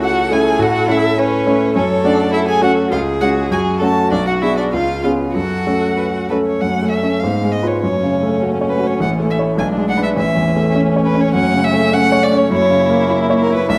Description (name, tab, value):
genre	quick classical-period movement for piano quartet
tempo	102 BPM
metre	2/4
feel	rubato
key	F# minor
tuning	A4 = 440 Hz
part	rich violin	melody	0.0-13.8 s	A#4 to A5	-22 LUFS	equal	none
part	rich cello	second line	0.0-13.8 s	Ab3 to B4	-25 LUFS	equal	none
part	rich violin	second line	0.0-13.8 s	Cb4 to A4	-25 LUFS	equal	none
part	clear grand piano	accompaniment	0.0-13.8 s	A1 to C#5	-18 LUFS	equal	none
room	moderate recital hall reverb, RT60 1.4 s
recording	close, detailed microphones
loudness	-16 LUFS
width	mono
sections	0.0-6.6 A section; 6.6-13.8 B section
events	none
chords	0.0 A/C#; 0.6 A; 1.8 F#m; 2.9 C#5; 3.5 F#m; 4.1 G#dim/B; 4.7 C#7; 5.3 F#m; 7.2 Fdim/Ab; 7.8 F#m; 9.0 A; 9.6 G#dim/B; 10.2 A; 11.3 F#m; 12.5 F#7